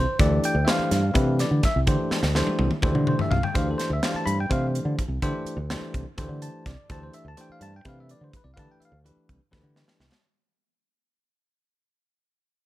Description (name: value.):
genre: electric jazz fusion.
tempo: 251 BPM (eighths).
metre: 7/8.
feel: straight.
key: D dorian.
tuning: A4 = 440 Hz.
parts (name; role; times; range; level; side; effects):
bell-like tine electric piano; accompaniment; 0.0-10.0 s; E3 to B5; -27 LUFS; left 1 dB; none.
fingered electric bass; bass; 0.0-10.1 s; C2 to D3; -25 LUFS; equal; none.
crisp fusion drum kit; drums; 0.2-10.2 s; hi-hat, kick drum, snare drum, toms; -26 LUFS; equal; none.
room: little or no reverb.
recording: none.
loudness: -21 LUFS.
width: side -15 dB against mid.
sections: 0.0-10.2 A section.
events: fade-out 0.0-10.2; drum fill 2.1-3.5, 9.5-10.2; tine electric piano fill 6.2-6.9.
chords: 0.0 Dm11.